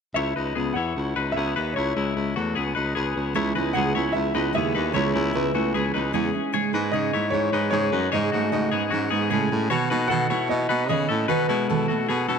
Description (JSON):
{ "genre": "indie pop", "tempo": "151 BPM", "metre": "4/4", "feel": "straight", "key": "C# minor", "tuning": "A4 = 440 Hz", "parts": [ { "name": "warm upright piano", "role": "melody", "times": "0.1-12.4 s", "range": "A4 to F#5", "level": "-28 LUFS", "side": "left 1 dB", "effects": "dub echo" }, { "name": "twelve-string electric guitar", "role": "arpeggios", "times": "0.2-12.4 s", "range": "G#3 to C#5", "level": "-26 LUFS", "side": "left 6 dB", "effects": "dub echo" }, { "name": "warm baritone saxophone", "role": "bass", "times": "0.2-12.4 s", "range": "C#2 to C#3", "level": "-26 LUFS", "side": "equal", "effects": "none" }, { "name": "picked steel-string acoustic guitar", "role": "accompaniment", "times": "3.3-12.4 s", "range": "G#2 to A4", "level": "-27 LUFS", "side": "right 8 dB", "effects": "none" } ], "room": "light reverb", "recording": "echo-heavy mix", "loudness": "-21 LUFS", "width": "side -6 dB against mid", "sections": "0.2-3.4 A section; 3.4-12.4 B section", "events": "none", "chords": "0.2 C#m7; 3.2 C#5; 3.4 C#m7; 6.3 G#sus4; 9.7 B7" }